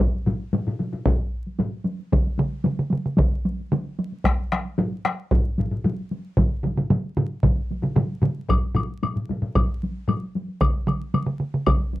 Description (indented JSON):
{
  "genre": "japanese traditional, taiko drum ensemble",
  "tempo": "113 BPM",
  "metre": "4/4",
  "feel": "straight",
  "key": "none",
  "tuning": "none",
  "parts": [
    { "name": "solo taiko drums", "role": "percussion", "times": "0.0-11.8 s", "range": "none", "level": "-23 LUFS", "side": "equal", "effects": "none" },
    { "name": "taiko ensemble", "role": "percussion", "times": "0.0-12.0 s", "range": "none", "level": "-27 LUFS", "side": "equal", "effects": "none" },
    { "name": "taiko ensemble", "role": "percussion", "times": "0.0-10.2 s", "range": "none", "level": "-25 LUFS", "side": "left 2 dB", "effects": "none" },
    { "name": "solo taiko drums", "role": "percussion", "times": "2.1-11.8 s", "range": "none", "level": "-24 LUFS", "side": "right 2 dB", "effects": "none" },
    { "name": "woodblock", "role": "percussion", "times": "8.5-11.8 s", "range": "none", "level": "-28 LUFS", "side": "left 6 dB", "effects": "none" }
  ],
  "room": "light reverb",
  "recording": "dry, close 1970s-style studio recording, vinyl crackle",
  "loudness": "-22 LUFS",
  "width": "side -16 dB against mid",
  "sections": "0.0-12.0 A section",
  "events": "none",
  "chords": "none"
}